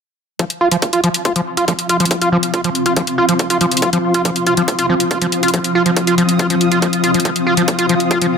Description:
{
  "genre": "psychedelic trance",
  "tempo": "140 BPM",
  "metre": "4/4",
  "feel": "straight",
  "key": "unclear",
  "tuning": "A4 = 440 Hz",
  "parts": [
    { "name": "evolving wavetable pad", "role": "sustained chords", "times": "1.2-8.4 s", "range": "F3", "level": "-20 LUFS", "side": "left 2 dB", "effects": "chorus, built-in reverb, sidechain pumping" },
    { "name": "screaming distorted acid line", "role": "riff", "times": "0.4-8.3 s", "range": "F3 to F4", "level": "-16 LUFS", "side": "right 1 dB", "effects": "distortion, chorus, auto-pan, sidechain pumping, dub echo" },
    { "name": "electronic hi-hat", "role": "drums", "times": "0.4-8.3 s", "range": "none", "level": "-20 LUFS", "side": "left 2 dB", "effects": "overdrive" },
    { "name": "electronic kick drum", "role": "drums", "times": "0.4-8.2 s", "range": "none", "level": "-19 LUFS", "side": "right 1 dB", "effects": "overdrive, high-pass filter on kick" },
    { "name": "granular cloud pad", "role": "texture", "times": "1.5-8.4 s", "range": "C4 to Eb6", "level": "-20 LUFS", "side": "equal", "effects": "built-in reverb, sidechain pumping" }
  ],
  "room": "moderate digital room reverb, RT60 1.0 s, digital ambience",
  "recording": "dense, heavily limited modern master",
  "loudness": "-13 LUFS",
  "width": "side -6 dB against mid",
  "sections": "0.4-8.4 A section",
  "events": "filter sweep on acid bass 0.4-8.4; filter sweep on ambient pad 0.4-8.4",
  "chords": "0.4 F5"
}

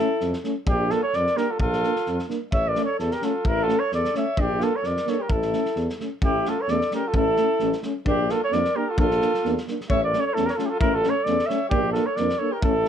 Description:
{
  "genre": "balkan folk, Balkan brass band",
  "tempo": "130 BPM",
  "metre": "2/4",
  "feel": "swing 55% on 16ths",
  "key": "A phrygian dominant",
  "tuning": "A4 = 444 Hz",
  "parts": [
    { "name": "warm flugelhorn", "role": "melody", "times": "0.0-12.9 s", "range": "G4 to E5", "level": "-24 LUFS", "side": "right 1 dB", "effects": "none" },
    { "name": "warm alto saxophone", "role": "second line", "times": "0.0-12.9 s", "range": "D4 to C#5", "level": "-29 LUFS", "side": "left 4 dB", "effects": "none" },
    { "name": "mellow French horn", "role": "accompaniment", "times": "0.0-12.9 s", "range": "C#4 to D4", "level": "-31 LUFS", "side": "left 8 dB", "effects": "none" },
    { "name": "mellow euphonium", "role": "accompaniment", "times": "0.0-12.7 s", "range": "A3 to Bb3", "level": "-30 LUFS", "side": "right 8 dB", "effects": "none" },
    { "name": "warm tuba", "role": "bass", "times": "0.2-12.9 s", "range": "A1 to F2", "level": "-28 LUFS", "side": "equal", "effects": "none" },
    { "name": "loose indie drum kit", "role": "percussion", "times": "0.2-12.9 s", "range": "kick drum, snare drum", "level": "-29 LUFS", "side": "equal", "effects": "none" }
  ],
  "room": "light reverb",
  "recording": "dark, warm production",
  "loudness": "-21 LUFS",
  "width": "side -8 dB against mid",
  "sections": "0.0-6.2 A section; 6.2-12.9 A section",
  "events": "none",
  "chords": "0.0 A; 0.7 Bb; 2.5 A; 4.4 Bb; 5.3 A; 8.1 Bb; 9.9 A; 11.7 Bb"
}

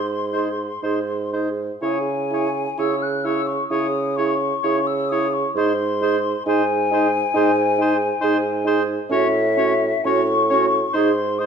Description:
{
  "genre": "classical, slow romantic movement for wind quintet",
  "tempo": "59-69 BPM",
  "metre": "4/4",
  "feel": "rubato",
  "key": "C# minor",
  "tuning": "A4 = 439 Hz",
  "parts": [
    { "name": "mellow hollow silver concert flute", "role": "melody", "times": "0.0-11.5 s", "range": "E5 to F#6", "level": "-23 LUFS", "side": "left 6 dB", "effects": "none" },
    { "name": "dark bassoon", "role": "bass", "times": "0.0-11.5 s", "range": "G#2 to C#3", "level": "-22 LUFS", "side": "right 3 dB", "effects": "none" },
    { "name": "clear oboe", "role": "second line", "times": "0.3-11.5 s", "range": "B#4 to C#5", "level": "-29 LUFS", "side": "left 1 dB", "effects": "none" },
    { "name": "clear French horn", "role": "accompaniment", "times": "0.3-11.5 s", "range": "C#4 to E4", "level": "-26 LUFS", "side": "equal", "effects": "none" },
    { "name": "mellow clarinet", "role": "accompaniment", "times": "0.4-11.5 s", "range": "F#4 to G#4", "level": "-26 LUFS", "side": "right 11 dB", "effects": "none" }
  ],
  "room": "wet recital hall reverb, RT60 1.4 s",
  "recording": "dark, warm production",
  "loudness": "-18 LUFS",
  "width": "side -6 dB against mid",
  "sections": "0.0-11.5 A section",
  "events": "none",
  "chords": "0.0 G#; 1.8 C#m; 5.6 G#; 9.1 A6; 10.9 G#"
}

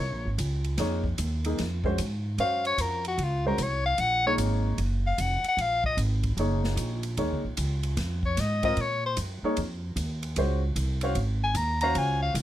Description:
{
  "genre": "modal jazz",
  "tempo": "150 BPM",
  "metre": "4/4",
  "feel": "swing 65% on 8ths",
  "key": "Bb minor",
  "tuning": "A4 = 440 Hz",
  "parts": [
    { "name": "warm soprano saxophone", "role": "melody", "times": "0.0-12.4 s", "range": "F4 to Bb5", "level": "-26 LUFS", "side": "left 2 dB", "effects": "none" },
    { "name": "upright bass", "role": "bass", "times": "0.0-12.4 s", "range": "F1 to Bb2", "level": "-28 LUFS", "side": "right 1 dB", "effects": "none" },
    { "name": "swinging big-band drum kit", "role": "drums", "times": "0.4-12.4 s", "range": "hi-hat, kick drum, ride cymbal, snare drum", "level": "-36 LUFS", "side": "equal", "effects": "none" },
    { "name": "warm baby grand piano", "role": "accompaniment", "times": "0.8-12.3 s", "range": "Ab3 to F5", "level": "-30 LUFS", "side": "equal", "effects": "none" }
  ],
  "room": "little or no reverb",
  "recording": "close, detailed microphones",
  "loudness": "-25 LUFS",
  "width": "side -12 dB against mid",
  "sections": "0.0-12.4 A section",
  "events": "soprano saxophone solo 0.0-12.4",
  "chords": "0.0 Bbm7; 2.4 Ebm9; 8.8 Bbm9"
}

